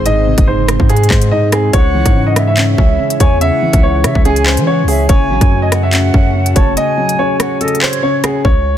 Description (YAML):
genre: hip hop, drill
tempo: 143 BPM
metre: 4/4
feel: half-time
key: unclear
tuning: A4 = 440 Hz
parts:
  - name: felt-muted upright piano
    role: accompaniment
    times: 0.0-8.5 s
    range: G#2 to C#5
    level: -18 LUFS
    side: left 1 dB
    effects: none
  - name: airy breathy pad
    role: sustained chords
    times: 0.0-8.4 s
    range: G#3 to C#5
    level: -23 LUFS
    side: right 1 dB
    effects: chorus
  - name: long sustained 808-style bass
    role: bass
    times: 0.0-8.8 s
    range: F#1 to E3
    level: -15 LUFS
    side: equal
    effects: none
  - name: warm grand piano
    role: melody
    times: 0.1-8.8 s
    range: G#4 to E5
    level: -17 LUFS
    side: equal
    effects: none
  - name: drill drum kit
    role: drums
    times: 0.1-8.6 s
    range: handclaps, hi-hat, kick drum, rim click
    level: -13 LUFS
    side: equal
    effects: none
  - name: mellow concert flute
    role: second line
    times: 1.7-8.4 s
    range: C#5 to A5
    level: -21 LUFS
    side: right 1 dB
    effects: ping-pong delay
room: studio reverb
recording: dense, heavily limited modern master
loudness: -10 LUFS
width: side -10 dB against mid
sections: 0.0-8.4 A section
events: break 6.8-8.4; hi-hats muted 8.4-8.8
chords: 0.0 G#; 1.7 C#m; 5.1 F#m